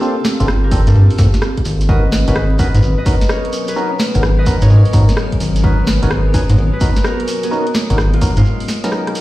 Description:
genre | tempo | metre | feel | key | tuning
UK garage, two-step garage | 128 BPM | 4/4 | swing 66% on 16ths | unclear | A4 = 440 Hz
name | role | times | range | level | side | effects
concert harp | melody | 0.0-9.2 s | Ab3 to Eb5 | -24 LUFS | left 1 dB | digital delay
ethereal airy pad | sustained chords | 0.0-9.2 s | Gb3 to Bb4 | -27 LUFS | left 2 dB | ensemble chorus, built-in reverb, sidechain pumping
percussive organ stab | stabs | 0.0-9.2 s | Gb3 to Bb4 | -22 LUFS | equal | chorus, ping-pong delay
shekere | percussion | 0.0-9.2 s | none | -32 LUFS | right 2 dB | none
granular cloud pad | texture | 0.0-9.2 s | Cb4 to Ab5 | -26 LUFS | right 2 dB | built-in reverb, sidechain pumping
punchy analog drum machine | drums | 0.2-9.2 s | hi-hat, rim click, snare drum | -22 LUFS | equal | none
rubbery square bass | bass | 0.4-8.4 s | G1 to Ab2 | -12 LUFS | equal | none
electronic kick drum | drums | 0.4-8.3 s | none | -16 LUFS | equal | none
room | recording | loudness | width
little or no reverb | played on a big sound system in a bare room, stone room reverb, vinyl crackle | -12 LUFS | side -16 dB against mid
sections
0.0-9.2 A section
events
break 8.4-9.2; drum fill 8.9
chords
0.0 Gm11; 1.9 Abm11

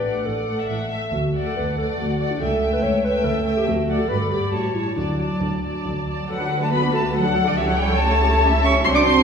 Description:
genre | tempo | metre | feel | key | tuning
quick classical-period movement for symphony orchestra | 141 BPM | 3/4 | straight | D major | A4 = 443 Hz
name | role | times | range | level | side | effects
muted chamber violin section | melody | 0.0-9.2 s | D5 to D6 | -24 LUFS | left 2 dB | none
dark clarinet | second line | 0.0-5.8 s | D4 to C#5 | -25 LUFS | left 1 dB | none
muted chamber violin section | second line | 0.0-9.2 s | A4 to F#5 | -27 LUFS | right 1 dB | none
muted chamber viola section | accompaniment | 0.0-9.2 s | F#3 to A4 | -26 LUFS | equal | none
muted chamber cello section | bass | 0.0-9.2 s | C#2 to D4 | -26 LUFS | right 1 dB | none
muted chamber double bass section | bass | 0.0-9.2 s | G1 to D2 | -26 LUFS | right 1 dB | none
room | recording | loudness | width
wet recital hall reverb, RT60 1.4 s | recorded in a church or concert hall | -18 LUFS | side -6 dB against mid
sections
0.0-6.3 A section; 6.3-9.2 B section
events
none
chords
0.0 D/A; 1.1 D; 2.4 A7/C#; 3.7 D; 4.1 G; 4.5 A7; 5.0 D; 7.6 A7/C#

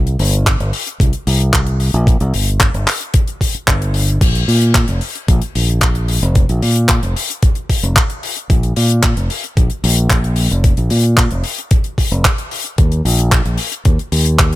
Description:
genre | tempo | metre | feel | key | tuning
nu-disco, nu disco | 112 BPM | 4/4 | straight | unclear | A4 = 440 Hz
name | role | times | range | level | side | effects
fingered electric bass | bass | 0.0-14.6 s | F1 to Bb2 | -14 LUFS | equal | none
tight funk drum kit | drums | 0.1-14.6 s | crash cymbal, handclaps, hi-hat | -18 LUFS | left 2 dB | none
electronic kick drum | drums | 0.5-14.5 s | none | -14 LUFS | equal | none
room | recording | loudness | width
little or no reverb | none | -12 LUFS | side -16 dB against mid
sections
0.0-14.6 A section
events
none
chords
none

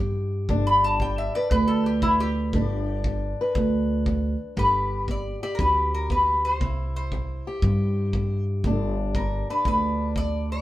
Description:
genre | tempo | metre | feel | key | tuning
acoustic country blues, solo or duo | 118 BPM | 4/4 | swing 67% on 8ths | G major | A4 = 443 Hz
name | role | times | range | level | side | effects
fingerpicked old ladder-braced acoustic guitar | accompaniment | 0.0-10.6 s | G2 to B4 | -31 LUFS | left 3 dB | none
upright bass | bass | 0.0-10.6 s | G1 to G2 | -25 LUFS | right 1 dB | none
kick drum | drums | 0.5-10.3 s | none | -29 LUFS | equal | none
lap resonator guitar | melody | 0.7-10.6 s | E4 to B5 | -24 LUFS | left 1 dB | none
room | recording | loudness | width
light reverb | band playing live in one room | -22 LUFS | side -15 dB against mid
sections
0.0-4.6 A section; 4.6-10.6 B section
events
resonator guitar played with a steel bar solo 0.0-4.6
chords
0.5 G; 6.6 C; 8.6 G

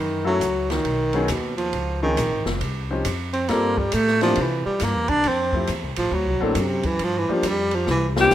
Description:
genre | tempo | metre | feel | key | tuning
jazz, small-group swing and bop | 136 BPM | 4/4 | swing 66% on 8ths | unclear | A4 = 444 Hz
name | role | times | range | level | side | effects
breathy baritone saxophone | second line | 0.0-8.1 s | A2 to D4 | -22 LUFS | right 1 dB | none
upright bass | bass | 0.0-8.3 s | F1 to C3 | -26 LUFS | equal | none
clear upright piano | accompaniment | 0.2-8.3 s | E3 to A4 | -26 LUFS | left 3 dB | none
open jazz drum kit | drums | 0.4-8.3 s | hi-hat, kick drum, ride cymbal, snare drum | -30 LUFS | equal | none
bright alto saxophone | melody | 8.2-8.3 s | G4 | -13 LUFS | left 3 dB | none
room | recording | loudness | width
moderate lush hall reverb, RT60 1.8 s, studio reverb | rough home demo mix | -20 LUFS | side -12 dB against mid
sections
0.0-8.3 A section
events
baritone saxophone solo 0.0-8.3; drum fill 7.9-8.3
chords
0.0 Gbm7; 0.8 Badd9; 1.7 Dbmaj9; 3.5 Gm11; 4.4 C; 5.3 Fmaj9; 6.1 D7b13; 7.0 Gm7

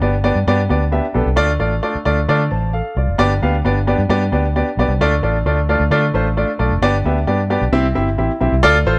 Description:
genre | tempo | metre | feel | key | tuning
uptempo 1960s-style soul | 132 BPM | 4/4 | straight | D dorian | A4 = 440 Hz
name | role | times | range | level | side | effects
clear baby grand piano | accompaniment | 0.0-9.0 s | A3 to A5 | -19 LUFS | equal | none
vintage muted fingered electric bass | bass | 0.0-9.0 s | F1 to D3 | -20 LUFS | equal | none
room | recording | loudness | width
light reverb | none | -17 LUFS | mono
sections
0.0-8.6 A section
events
none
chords
0.0 G; 1.4 Dm; 3.2 G; 5.0 Dm; 6.8 G; 7.7 C

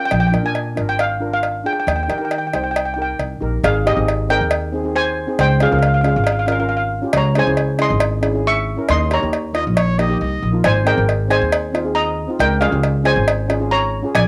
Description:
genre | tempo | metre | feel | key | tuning
calypso | 137 BPM | 4/4 | straight | Ab major | A4 = 440 Hz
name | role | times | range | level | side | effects
steel pan | melody | 0.0-14.3 s | G4 to Db6 | -22 LUFS | equal | cassette tape
steel pan | accompaniment | 0.0-14.2 s | Bb3 to C5 | -26 LUFS | equal | cassette tape
upright bass | bass | 0.1-14.3 s | Ab1 to Eb3 | -22 LUFS | equal | none
cowbell | percussion | 0.1-14.3 s | none | -24 LUFS | equal | none
warm trumpet | second line | 9.5-10.5 s | Db5 to Eb5 | -26 LUFS | equal | cassette tape
room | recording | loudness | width
moderate studio reverb, RT60 0.6 s | home recording on cassette | -18 LUFS | mono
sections
0.0-3.6 A section; 3.6-14.3 B section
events
none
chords
0.1 Bb7; 1.9 Eb; 3.6 Abmaj7; 5.4 Db; 7.1 Dbm; 8.9 Eb7; 10.6 Abadd9; 12.4 Db6

